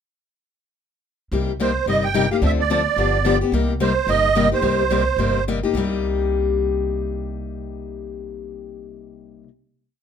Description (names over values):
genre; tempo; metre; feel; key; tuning
acoustic string swing (jazz manouche); 216 BPM; 4/4; swing 57% on 8ths; C minor; A4 = 440 Hz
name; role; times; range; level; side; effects
picked steel-string acoustic guitar; accompaniment; 1.3-9.5 s; C3 to A4; -22 LUFS; left 6 dB; none
upright bass; bass; 1.3-9.4 s; G1 to D2; -24 LUFS; right 1 dB; none
musette accordion; melody; 1.6-5.4 s; C5 to G5; -20 LUFS; right 7 dB; none
room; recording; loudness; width
light reverb; minimal, uncompressed stereo recording; -18 LUFS; side -8 dB against mid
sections
1.3-5.8 A section; 5.8-8.0 final chord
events
none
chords
1.3 Cm7; 2.4 Dm7; 3.0 G7; 3.5 Cm7